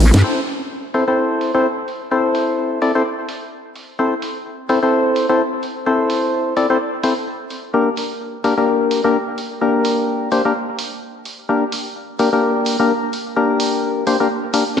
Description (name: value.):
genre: bass house.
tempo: 128 BPM.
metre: 4/4.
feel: swing 57% on 16ths.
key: A phrygian.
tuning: A4 = 438 Hz.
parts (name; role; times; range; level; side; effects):
house drum kit; drums; 0.0-14.8 s; hi-hat, snare drum; -26 LUFS; right 1 dB; overdrive, low-pass filter on hats, low-pass filter on snare, low-pass filter on room.
percussive organ stab; stabs; 0.2-14.6 s; Bb3 to D5; -16 LUFS; left 2 dB; chorus, tape echo.
room: moderate lush hall reverb, RT60 1.9 s, digital ambience.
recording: lossy compression artefacts.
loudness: -16 LUFS.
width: side -8 dB against mid.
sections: 0.2-14.8 A section.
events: drum fill 0.0; band accent 0.1.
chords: 0.2 Am; 7.7 Gm.